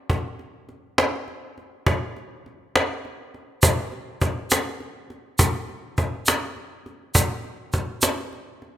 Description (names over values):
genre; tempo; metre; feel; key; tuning
rock; 68 BPM (dotted quarters); 6/8; straight; none; none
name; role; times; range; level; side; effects
cajon; drums; 0.1-8.7 s; none; -21 LUFS; equal; none
egg shaker; percussion; 3.6-8.2 s; none; -24 LUFS; right 2 dB; none
room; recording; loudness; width
light reverb; rough home demo mix; -22 LUFS; side -12 dB against mid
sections
0.0-3.6 A section; 3.6-8.8 B section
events
none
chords
none